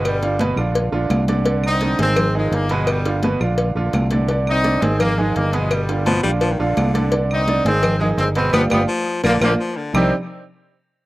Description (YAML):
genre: latin, salsa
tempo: 170 BPM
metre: 4/4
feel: straight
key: C minor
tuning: A4 = 442 Hz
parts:
  - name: clear horn section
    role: melody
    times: 0.0-10.1 s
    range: D3 to Eb4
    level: -21 LUFS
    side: left 1 dB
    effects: slapback echo
  - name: bright concert grand piano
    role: accompaniment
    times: 0.0-10.1 s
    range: B2 to D5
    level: -22 LUFS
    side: right 3 dB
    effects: none
  - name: fingered electric bass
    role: bass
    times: 0.0-10.1 s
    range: G1 to C2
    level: -21 LUFS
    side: equal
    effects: none
  - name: congas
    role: percussion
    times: 0.0-10.0 s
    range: none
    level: -24 LUFS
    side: equal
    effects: none
  - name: claves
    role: percussion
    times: 0.1-10.0 s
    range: none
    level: -32 LUFS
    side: right 2 dB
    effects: none
  - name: cowbell and bongos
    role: percussion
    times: 0.1-10.0 s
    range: none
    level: -26 LUFS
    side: left 2 dB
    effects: slapback echo
  - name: breathy baritone saxophone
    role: second line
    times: 6.1-10.1 s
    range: D3 to G3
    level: -23 LUFS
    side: left 3 dB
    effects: none
room: little or no reverb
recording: recorded outdoors, with no room sound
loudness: -16 LUFS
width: side -18 dB against mid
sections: 0.0-9.9 A section; 9.9-11.1 B section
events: drum fill 8.5-9.9; band accent 8.5-9.9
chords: 0.0 G7; 0.8 Bb; 1.5 Cmadd9; 2.2 Ab5; 2.9 G7; 3.6 Bb; 4.3 Cmadd9; 5.0 Ab5; 5.7 G7; 6.4 Bb; 7.1 Cmadd9; 7.8 Ab5; 8.5 G7(no3); 9.2 Bb; 9.9 Cmadd9